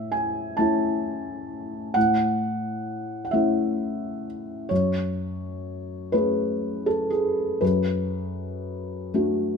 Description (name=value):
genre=neoclassical minimalist piano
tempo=39-45 BPM (dotted quarters)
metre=6/8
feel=rubato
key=A major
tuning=A4 = 440 Hz
part: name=felt-muted upright piano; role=solo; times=0.0-9.6 s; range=F#2 to A5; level=-23 LUFS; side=left 1 dB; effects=none
room=light reverb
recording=minimal, uncompressed stereo recording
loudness=-23 LUFS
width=side -5 dB against mid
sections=0.0-9.6 A section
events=none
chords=0.0 A; 4.7 F#madd9; 7.6 D6/F#